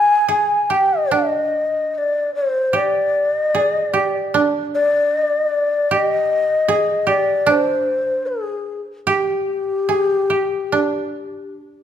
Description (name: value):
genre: japanese traditional, Japanese chamber music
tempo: 75 BPM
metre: 4/4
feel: rubato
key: G miyako bushi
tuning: A4 = 439 Hz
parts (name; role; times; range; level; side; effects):
- breathy mellow long shakuhachi; melody; 0.0-11.6 s; G4 to Ab5; -17 LUFS; left 2 dB; none
- koto; second line; 0.0-11.8 s; D4 to Ab4; -21 LUFS; right 5 dB; none
room: moderate recital hall reverb, RT60 1.7 s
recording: minimal, uncompressed stereo recording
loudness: -16 LUFS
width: side -9 dB against mid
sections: 0.0-11.8 A section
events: none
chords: none